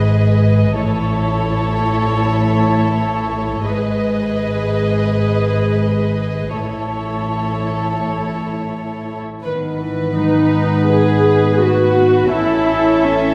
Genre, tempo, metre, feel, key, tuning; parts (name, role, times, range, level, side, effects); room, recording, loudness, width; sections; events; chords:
cinematic; free time; A4 = 440 Hz
warm chamber violin section; melody; 0.0-13.3 s; B4 to E5; -28 LUFS; equal
warm chamber violin section; second line; 0.0-13.3 s; A4 to C#5; -25 LUFS; equal
warm chamber viola section; accompaniment; 0.0-13.3 s; C#4 to G#4; -22 LUFS; equal
dark chamber double bass section; bass; 0.0-13.3 s; G#1 to A1; -24 LUFS; equal
warm chamber cello section; bass; 0.0-13.3 s; G#2 to C#4; -22 LUFS; equal
mellow French horn section; sustained chords; 9.4-13.3 s; A3 to E4; -23 LUFS; equal
wet scoring stage reverb, RT60 1.5 s; heard from further back in the room; -17 LUFS; mono
0.0-9.4 A section; 9.4-13.3 A section
0.0 G#m; 0.8 A; 3.6 G#m; 6.5 A; 9.4 G#m; 12.3 A